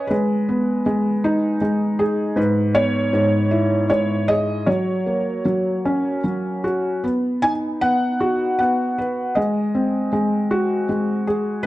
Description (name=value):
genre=children's music, lullaby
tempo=78 BPM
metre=3/4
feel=rubato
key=unclear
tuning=A4 = 440 Hz
part: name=felt-muted upright piano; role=solo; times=0.0-11.7 s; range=G#2 to G#5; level=-18 LUFS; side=equal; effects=none
room=light reverb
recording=close, detailed microphones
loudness=-18 LUFS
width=side -16 dB against mid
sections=0.0-11.7 A section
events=none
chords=0.1 G#m; 2.4 E/G#; 4.7 F#; 7.0 B; 9.4 G#7